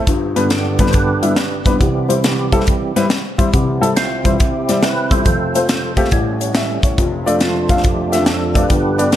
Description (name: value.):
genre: uptempo gospel.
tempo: 139 BPM.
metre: 4/4.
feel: swing 66% on 8ths.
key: C major.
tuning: A4 = 442 Hz.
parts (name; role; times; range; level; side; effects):
dark upright piano; accompaniment; 0.0-9.2 s; F1 to F5; -18 LUFS; left 2 dB; none.
crisp fusion drum kit; drums; 0.1-9.2 s; hi-hat, kick drum, snare drum; -17 LUFS; equal; none.
percussive tonewheel organ; sustained chords; 0.4-9.2 s; F2 to C5; -19 LUFS; right 3 dB; slow rotary speaker, chorus vibrato.
mellow French horn section; sustained chords; 3.5-9.2 s; C3 to E5; -27 LUFS; right 2 dB; none.
room: light reverb, small room ambience.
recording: lossy compression artefacts.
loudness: -13 LUFS.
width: side -12 dB against mid.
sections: 0.0-9.2 A section.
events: tonewheel organ solo 0.0-9.2.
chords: 0.1 G; 1.8 C; 5.3 F; 6.1 A7; 7.0 Dm/F.